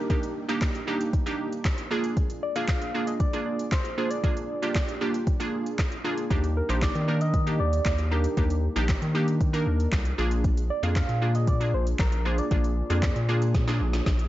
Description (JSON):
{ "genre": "dance-pop", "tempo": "116 BPM", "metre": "4/4", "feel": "straight", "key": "Eb major", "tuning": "A4 = 440 Hz", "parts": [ { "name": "soft struck synth lead", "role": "melody", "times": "0.0-13.9 s", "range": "Bb4 to F5", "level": "-32 LUFS", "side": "equal", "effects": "chorus, phaser, analog delay" }, { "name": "glassy wavetable pluck", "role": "accompaniment", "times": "0.0-14.2 s", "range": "Bb3 to Bb4", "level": "-29 LUFS", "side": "right 1 dB", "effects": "chorus, sidechain pumping" }, { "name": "downlifter", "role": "sound effects", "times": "0.0-2.2 s", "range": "none", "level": "-52 LUFS", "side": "left 4 dB", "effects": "none" }, { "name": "smooth R&B drum kit", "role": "drums", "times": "0.1-14.3 s", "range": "handclaps, hi-hat, kick drum, snare drum", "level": "-27 LUFS", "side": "equal", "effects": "none" }, { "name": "round analog bass", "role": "bass", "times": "6.3-14.3 s", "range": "Bb1 to Eb3", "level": "-25 LUFS", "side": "equal", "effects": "sidechain pumping" } ], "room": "digital ambience", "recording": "dry, gritty hardware recording, cassette tape, nothing above 7.7 kHz", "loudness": "-23 LUFS", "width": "side -15 dB against mid", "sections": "0.0-14.3 A section", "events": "drum fill 13.5-14.3", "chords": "0.0 Ebmaj7; 1.9 Bb7; 6.3 Ebmaj7; 10.2 Bb7" }